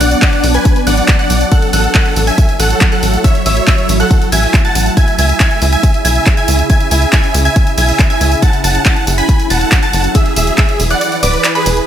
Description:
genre	uplifting trance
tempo	139 BPM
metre	4/4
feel	straight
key	F# minor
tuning	A4 = 440 Hz
part	supersaw chords	melody	0.0-11.8 s	G#4 to B5	-17 LUFS	right 2 dB	sidechain pumping, digital delay
part	wide unison pluck	second line	0.0-11.8 s	B5 to B6	-20 LUFS	equal	sidechain pumping, ping-pong delay
part	shimmering ambient pad	sustained chords	0.0-11.9 s	C#3 to B4	-18 LUFS	equal	chorus, built-in reverb, sidechain pumping
part	tight sequencer bass	bass	0.0-11.8 s	D1 to C#2	-14 LUFS	equal	sidechain pumping
part	house drum kit	drums	0.0-11.9 s	handclaps, hi-hat, tambourine	-18 LUFS	equal	studio reverb
part	electronic kick drum	drums	0.2-10.7 s	none	-12 LUFS	equal	studio reverb
room	little or no reverb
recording	none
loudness	-9 LUFS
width	side -10 dB against mid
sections	0.0-11.9 A section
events	drop 0.0-11.9; kick drops out 11.0-11.9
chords	0.0 Bm; 1.5 F#m7/A; 5.0 C#m; 8.4 F#m7; 10.2 E

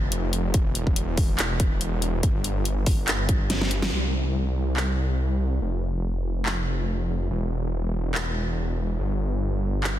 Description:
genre	future bass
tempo	142 BPM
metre	4/4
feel	swing 54% on 16ths, half-time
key	unclear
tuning	A4 = 441 Hz
part	wide detuned saw bass	bass	0.0-10.0 s	E1 to C2	-25 LUFS	equal	chorus, sidechain pumping
part	dubstep drum kit	drums	0.1-9.9 s	handclaps, hi-hat, snare drum	-28 LUFS	equal	none
part	electronic kick drum	drums	0.5-3.4 s	none	-23 LUFS	equal	none
room	little or no reverb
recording	dense, heavily limited modern master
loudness	-23 LUFS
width	side -12 dB against mid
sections	0.0-3.9 A section; 3.9-10.0 B section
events	drop 0.0-3.9; drum fill 3.5-3.9; band accent 3.8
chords	none

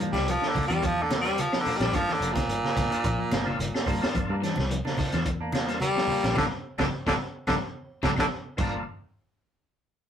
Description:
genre	afrobeat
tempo	108 BPM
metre	4/4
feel	straight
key	G dorian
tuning	A4 = 441 Hz
part	electric guitar at the edge of break-up	arpeggios	0.0-8.8 s	G2 to G3	-36 LUFS	left 3 dB	none
part	semi-hollow electric guitar	stabs	0.0-8.8 s	F3 to D4	-35 LUFS	right 2 dB	none
part	fingered electric bass	bass	0.0-8.8 s	F1 to G2	-32 LUFS	left 1 dB	none
part	crunchy breakbeat drum kit	drums	0.0-8.7 s	crash cymbal, hi-hat, kick drum, snare drum	-30 LUFS	equal	none
part	raspy baritone saxophone	melody	0.1-8.3 s	Bb2 to G3	-27 LUFS	equal	none
part	claves	percussion	0.1-8.7 s	none	-44 LUFS	left 4 dB	none
part	congas	percussion	0.1-8.7 s	none	-35 LUFS	right 1 dB	none
part	percussive tonewheel organ	accompaniment	0.7-8.8 s	Bb3 to C5	-36 LUFS	left 1 dB	overdrive, chorus vibrato, fast rotary speaker
room	wet small room ambience, RT60 0.5 s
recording	rough rehearsal-room recording, warm saturation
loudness	-24 LUFS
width	side -8 dB against mid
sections	0.0-8.6 A section; 8.6-10.1 B section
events	baritone saxophone solo 0.0-8.6; band accent 6.4-8.6; drum fill 7.5-8.6; tonewheel organ fill 7.8-8.6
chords	0.0 Gm7

